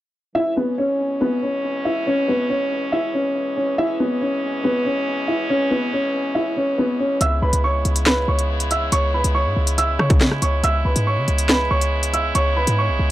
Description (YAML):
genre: hip hop, drill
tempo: 140 BPM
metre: 4/4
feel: half-time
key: C# minor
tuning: A4 = 440 Hz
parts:
  - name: dark concert grand piano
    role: melody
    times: 0.3-13.1 s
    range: B3 to E6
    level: -20 LUFS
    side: equal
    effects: low-pass filter
  - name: muted French horn section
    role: sustained chords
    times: 0.3-13.1 s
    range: B2 to E4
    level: -27 LUFS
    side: equal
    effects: none
  - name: short 808-style bass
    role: bass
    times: 7.2-13.1 s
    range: B1 to C#3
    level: -20 LUFS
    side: equal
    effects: transformer saturation
  - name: drill drum kit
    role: drums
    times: 7.2-12.8 s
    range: handclaps, hi-hat, kick drum, rim click, snare drum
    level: -18 LUFS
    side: equal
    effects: none
room: little or no reverb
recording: dry, gritty hardware recording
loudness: -18 LUFS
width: side -14 dB against mid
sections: 0.4-7.2 A section; 7.2-13.1 B section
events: none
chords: 0.4 C#m7